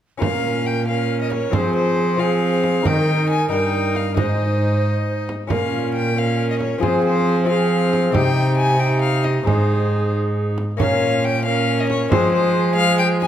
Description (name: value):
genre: classical, renaissance-style consort dance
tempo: 91 BPM (dotted quarters)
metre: 6/8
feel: straight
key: Bb dorian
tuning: A4 = 440 Hz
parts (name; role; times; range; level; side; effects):
- rich violin; melody; 0.2-13.3 s; C5 to Ab5; -24 LUFS; left 4 dB; none
- mellow tenor recorder; second line; 0.2-13.3 s; G4 to Db5; -24 LUFS; right 5 dB; none
- lute; accompaniment; 0.2-13.3 s; G2 to C5; -27 LUFS; left 8 dB; none
- warm viola; accompaniment; 0.2-13.3 s; Ab3 to Eb4; -26 LUFS; left 3 dB; none
- dark cello; bass; 0.2-13.3 s; G2 to F3; -21 LUFS; right 1 dB; none
- frame drum; percussion; 0.2-13.3 s; none; -25 LUFS; right 3 dB; none
room: moderate recital hall reverb, RT60 1.7 s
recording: none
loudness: -16 LUFS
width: side -10 dB against mid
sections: 0.2-10.8 A section; 10.8-13.3 A section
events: none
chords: 0.2 Bbm; 1.5 Fm; 2.9 Eb; 4.2 Ab; 5.5 Bbm; 6.8 Fm; 8.2 Cm; 9.5 Ab; 10.8 Bbm; 12.1 Fm